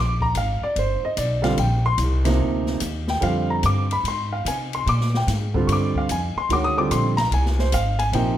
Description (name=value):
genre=modal jazz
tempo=146 BPM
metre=4/4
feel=swing 66% on 8ths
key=Bb mixolydian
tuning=A4 = 440 Hz
part: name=warm concert grand piano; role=accompaniment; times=0.0-8.4 s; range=C3 to Eb6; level=-22 LUFS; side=right 1 dB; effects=none
part: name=upright bass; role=bass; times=0.0-8.4 s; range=G1 to C3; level=-22 LUFS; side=equal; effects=none
part: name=open jazz drum kit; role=drums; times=0.2-8.3 s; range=hi-hat, kick drum, ride cymbal, snare drum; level=-30 LUFS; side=left 3 dB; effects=none
room=light reverb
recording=none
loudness=-19 LUFS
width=side -12 dB against mid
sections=0.0-8.4 A section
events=none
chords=0.0 Bb13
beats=0.35 0.76 1.17 | 1.58 1.99 2.40 2.81 | 3.22 3.63 4.04 4.45 | 4.86 5.27 5.68 6.09 | 6.50 6.91 7.32 7.73 | 8.14